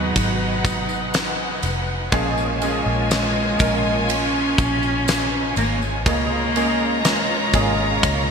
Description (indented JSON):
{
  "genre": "pop ballad",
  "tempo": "61 BPM",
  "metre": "4/4",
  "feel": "straight",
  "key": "unclear",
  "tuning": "A4 = 442 Hz",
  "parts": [
    { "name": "dark cello", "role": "melody", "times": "0.0-8.3 s", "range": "F#3 to C#4", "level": "-24 LUFS", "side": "equal", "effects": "none" },
    { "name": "warm studio violin section", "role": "second line", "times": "0.0-8.3 s", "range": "D#4 to A#5", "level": "-24 LUFS", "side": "left 1 dB", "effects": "none" },
    { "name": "clear concert grand piano", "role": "accompaniment", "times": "0.0-8.3 s", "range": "G#2 to A#4", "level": "-25 LUFS", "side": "right 1 dB", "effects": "ensemble chorus" },
    { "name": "vintage muted fingered electric bass", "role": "bass", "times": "0.0-8.3 s", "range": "E#1 to D#2", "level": "-26 LUFS", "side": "equal", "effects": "none" },
    { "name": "huge arena drum kit", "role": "drums", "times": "0.2-8.3 s", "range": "kick drum, ride cymbal, snare drum", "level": "-23 LUFS", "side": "equal", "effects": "none" },
    { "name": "tambourine", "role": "percussion", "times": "0.2-8.3 s", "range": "none", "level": "-35 LUFS", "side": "left 14 dB", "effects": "none" }
  ],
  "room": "light reverb, small room ambience",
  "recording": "bright 1980s-style digital production",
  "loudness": "-18 LUFS",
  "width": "side -6 dB against mid",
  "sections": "0.0-8.3 A section",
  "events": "none",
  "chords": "0.0 G#m7; 2.1 A#m7"
}